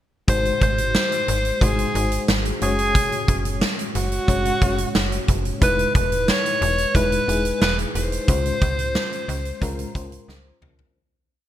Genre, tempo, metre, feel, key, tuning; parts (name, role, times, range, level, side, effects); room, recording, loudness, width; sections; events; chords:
1980s-style pop; 90 BPM; 4/4; straight; Ab mixolydian; A4 = 440 Hz
bright alto saxophone; melody; 0.3-10.2 s; Gb4 to Db5; -23 LUFS; equal; ping-pong delay
FM electric piano with tremolo; accompaniment; 0.3-11.0 s; Ab3 to Db5; -27 LUFS; left 3 dB
slap-like FM bass; bass; 0.3-10.9 s; E1 to Db2; -25 LUFS; equal
big rock drum kit; drums; 0.3-10.9 s; hi-hat, kick drum, snare drum, toms; -22 LUFS; right 1 dB
light reverb, small room ambience; bright 1980s-style digital production; -18 LUFS; side -12 dB against mid
0.3-11.0 chorus
fade-out 8.3-11.0; drum fill 10.3-11.0
0.3 Ab7; 2.6 Gbsus2; 5.6 Emaj7; 8.3 Dbmaj7